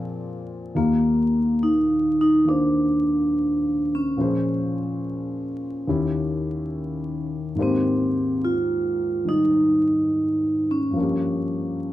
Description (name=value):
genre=jazz ballad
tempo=70 BPM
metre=4/4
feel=swing 69% on 8ths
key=Eb major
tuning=A4 = 440 Hz
part: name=dark baby grand piano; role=accompaniment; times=0.0-11.9 s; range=Eb2 to F5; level=-27 LUFS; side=left 2 dB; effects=none
part: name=vibraphone with medium mallets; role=melody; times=0.8-11.9 s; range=Bb3 to F4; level=-21 LUFS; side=equal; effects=none
room=light reverb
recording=close, detailed microphones, vinyl crackle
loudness=-20 LUFS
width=side -14 dB against mid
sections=0.7-11.9 A section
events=none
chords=0.0 Bb7; 0.7 Ebmaj9; 4.2 Bbm7; 5.9 Eb7b9; 7.6 Abmaj7; 10.9 Gm7b5